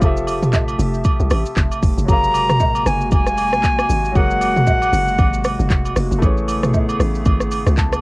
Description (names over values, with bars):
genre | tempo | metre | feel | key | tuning
amapiano | 116 BPM | 4/4 | swing 58% on 16ths | unclear | A4 = 441 Hz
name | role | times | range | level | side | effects
warm grand piano | accompaniment | 0.0-8.0 s | F3 to A5 | -26 LUFS | left 2 dB | cassette tape
hollow soft pad | sustained chords | 0.0-8.0 s | C3 to E5 | -26 LUFS | equal | chorus, cassette tape
hollow log drum bass | bass | 0.0-8.0 s | F1 to C#2 | -20 LUFS | equal | none
deep house drum kit | drums | 0.0-8.0 s | handclaps, hi-hat, kick drum, rim click, shaker, toms | -18 LUFS | equal | none
agogo bells and woodblock | percussion | 0.0-8.0 s | none | -27 LUFS | right 4 dB | none
breathy silver concert flute | melody | 2.1-6.0 s | F#5 to A#5 | -18 LUFS | equal | cassette tape, tape echo
room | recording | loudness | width
little or no reverb | home recording on cassette | -14 LUFS | side -23 dB against mid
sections
0.0-8.0 A section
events
none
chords
0.0 Fmaj9; 2.1 F#maj9; 6.2 Amaj9